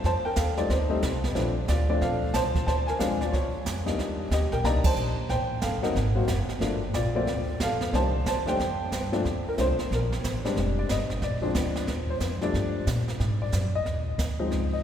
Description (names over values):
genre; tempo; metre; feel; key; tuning
jazz piano trio; 182 BPM; 4/4; swing 63% on 8ths; Bb major; A4 = 440 Hz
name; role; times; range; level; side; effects
warm upright piano; melody; 0.0-14.8 s; Bb2 to Bb5; -28 LUFS; left 2 dB; none
upright bass; bass; 0.0-14.8 s; F1 to Bb2; -28 LUFS; equal; none
jazz brush drum kit; drums; 0.0-14.8 s; brushed snare drum, crash cymbal, hi-hat, kick drum, snare drum; -32 LUFS; right 2 dB; none
room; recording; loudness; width
wet cathedral reverb, RT60 5.1 s; recorded in a church or concert hall; -24 LUFS; side -9 dB against mid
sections
0.0-9.2 A section; 9.2-14.8 B section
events
band accent 4.8; upright piano solo 9.2-14.8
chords
0.0 F7; 1.4 Bbmaj9; 2.7 Dm7b5; 3.3 Db; 4.0 Cm9; 5.3 Am7; 6.0 Ab7sus2; 6.6 Gm9; 7.9 Cm9; 8.6 Fsus2; 9.2 Bbmaj9; 10.6 Fm9; 11.2 Bb7; 11.9 Ebmaj9#11; 13.2 Ab7(no3)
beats
| 0.04 0.36 0.69 1.02 | 1.35 1.68 2.01 2.34 | 2.66 2.99 3.32 3.65 | 3.98 4.31 4.64 4.97 | 5.29 5.62 5.95 6.28 | 6.61 6.94 7.27 7.60 | 7.93 8.26 8.59 8.92 | 9.24 9.57 9.90 10.23 | 10.56 10.89 11.22 11.55 | 11.88 12.21 12.54 12.87 | 13.20 13.53 13.86 14.19 | 14.52